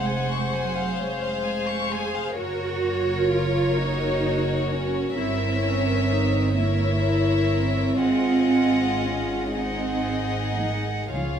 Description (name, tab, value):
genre	classical, slow romantic movement for symphony orchestra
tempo	36-44 BPM (dotted quarters)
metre	6/8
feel	rubato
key	unclear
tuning	A4 = 440 Hz
part	warm chamber violin section	melody	0.0-11.4 s	Db5 to Gb5	-31 LUFS	equal	none
part	warm chamber violin section	second line	0.0-11.4 s	Ab4 to Db6	-30 LUFS	left 4 dB	none
part	warm chamber viola section	accompaniment	0.0-11.4 s	Db4 to C5	-29 LUFS	left 3 dB	none
part	dark symphonic cello section	bass	0.0-11.4 s	Eb3 to Ab4	-26 LUFS	right 3 dB	none
part	warm chamber double bass section	bass	0.0-11.4 s	F1 to Db2	-27 LUFS	right 2 dB	none
part	timpani	percussion	11.1-11.4 s	Db3	-29 LUFS	equal	none
room	wet recital hall reverb, RT60 1.5 s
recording	minimal, uncompressed stereo recording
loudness	-21 LUFS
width	side -8 dB against mid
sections	0.0-11.4 A section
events	none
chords	0.0 Db/F; 2.4 Gb; 5.2 Gdim7; 8.0 Ab7